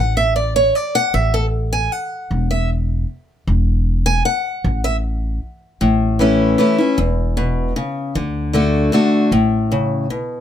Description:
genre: bluegrass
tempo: 154 BPM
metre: 3/4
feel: straight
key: A major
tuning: A4 = 440 Hz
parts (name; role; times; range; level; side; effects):
- picked steel-string acoustic guitar; accompaniment; 0.0-10.4 s; E2 to G#5; -16 LUFS; left 1 dB; none
- upright bass; bass; 0.0-10.0 s; E1 to D2; -19 LUFS; equal; none
room: light reverb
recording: none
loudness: -15 LUFS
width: side -10 dB against mid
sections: 0.0-5.8 A section; 5.8-10.4 B section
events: steel-string acoustic guitar solo 0.0-5.8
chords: 0.0 D5; 1.1 A5; 3.5 Eadd9; 4.6 A5; 5.8 A; 8.1 D

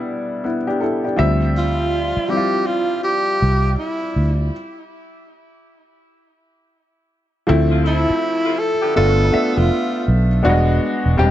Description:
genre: R&B, neo-soul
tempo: 81 BPM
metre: 4/4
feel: swing 63% on 16ths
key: D dorian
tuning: A4 = 439 Hz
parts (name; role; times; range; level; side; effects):
- warm upright piano; accompaniment; 0.0-11.3 s; F3 to E5; -20 LUFS; left 1 dB; plate reverb
- vintage muted fingered electric bass; bass; 1.2-11.3 s; E1 to D2; -16 LUFS; equal; none
- breathy tenor saxophone; melody; 1.6-10.1 s; E4 to A4; -20 LUFS; right 1 dB; plate reverb, tape echo
- mellow horn section; stabs; 7.7-9.3 s; C3 to A4; -27 LUFS; left 2 dB; plate reverb
room: moderate studio reverb, RT60 0.5 s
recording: dark, warm production, nothing above 7.9 kHz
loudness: -16 LUFS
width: side -12 dB against mid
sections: 0.0-7.5 A section; 7.5-11.3 B section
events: stop 4.5-7.5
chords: 0.0 Em7; 1.2 Dm11; 4.5 N.C.; 7.5 Dm9; 9.0 G9; 10.4 E9

